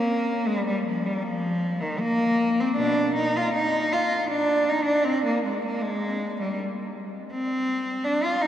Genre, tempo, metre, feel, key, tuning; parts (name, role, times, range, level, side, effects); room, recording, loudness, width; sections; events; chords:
classical, baroque-style suite movement for unaccompanied cello; 79 BPM; 3/4; rubato; A4 = 440 Hz
rich cello; solo; 0.0-8.5 s; B2 to F4; -22 LUFS; equal
wet cathedral reverb, RT60 6.2 s; heard from further back in the room; -22 LUFS; side -10 dB against mid
0.0-8.5 A section